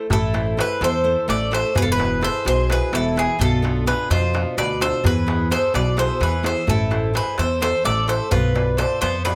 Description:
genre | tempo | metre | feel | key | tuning
greek folk, Greek bouzouki band | 256 BPM (eighths) | 7/8 | straight | A harmonic minor | A4 = 440 Hz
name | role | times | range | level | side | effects
flamenco guitar | accompaniment | 0.0-9.3 s | B2 to D5 | -29 LUFS | equal | none
Greek bouzouki | melody | 0.1-9.3 s | G#4 to D5 | -24 LUFS | equal | none
mandolin | second line | 0.1-9.3 s | E4 to B4 | -32 LUFS | equal | none
upright bass | bass | 0.1-9.3 s | E1 to F2 | -25 LUFS | equal | none
darbuka | percussion | 0.1-9.3 s | none | -28 LUFS | equal | none
room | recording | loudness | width
little or no reverb | close, detailed microphones | -20 LUFS | mono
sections
0.1-9.3 A section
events
none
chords
0.1 Am; 1.8 E; 3.4 Bdim; 5.0 E; 6.7 Am; 8.3 Bdim

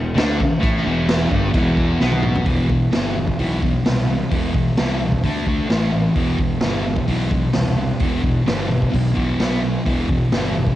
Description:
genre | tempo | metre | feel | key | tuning
garage rock duo or trio | 130 BPM | 4/4 | straight | E minor | A4 = 440 Hz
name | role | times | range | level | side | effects
thick fuzz guitar | riff | 0.0-10.8 s | E2 to D4 | -20 LUFS | equal | distortion, cassette tape
fuzz fingered electric bass | bass | 0.0-10.7 s | E1 to D2 | -23 LUFS | equal | overdrive
raw garage drum kit | drums | 0.2-10.8 s | crash cymbal, hi-hat, kick drum, snare drum, toms | -21 LUFS | equal | none
room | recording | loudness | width
light reverb, small room ambience | home recording on cassette, nothing above 11.0 kHz | -16 LUFS | side -14 dB against mid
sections
0.0-2.5 A section; 2.5-10.8 B section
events
drum fill 2.0-2.5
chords
0.0 Em; 5.2 D5; 5.7 A5; 6.2 Em; 9.4 B5; 9.9 Em

